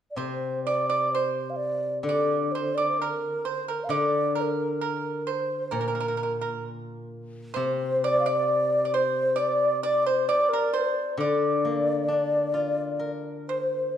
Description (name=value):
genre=chinese traditional, Chinese chamber ensemble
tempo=66 BPM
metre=4/4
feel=rubato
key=D jue mode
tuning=A4 = 440 Hz
part: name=low xiao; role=melody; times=0.1-14.0 s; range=Bb4 to F5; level=-27 LUFS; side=right 1 dB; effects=none
part: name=pipa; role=second line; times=0.2-13.9 s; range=Bb4 to D5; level=-29 LUFS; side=right 4 dB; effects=none
part: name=steel-string zither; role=accompaniment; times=0.2-14.0 s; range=Bb2 to Bb4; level=-31 LUFS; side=left 4 dB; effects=none
part: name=mellow hollow xiao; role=second line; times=7.6-14.0 s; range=C5 to F5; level=-29 LUFS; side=left 5 dB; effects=none
room=wet recital hall reverb, RT60 1.3 s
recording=dark, warm production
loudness=-23 LUFS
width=side -9 dB against mid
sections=0.2-14.0 A section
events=none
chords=none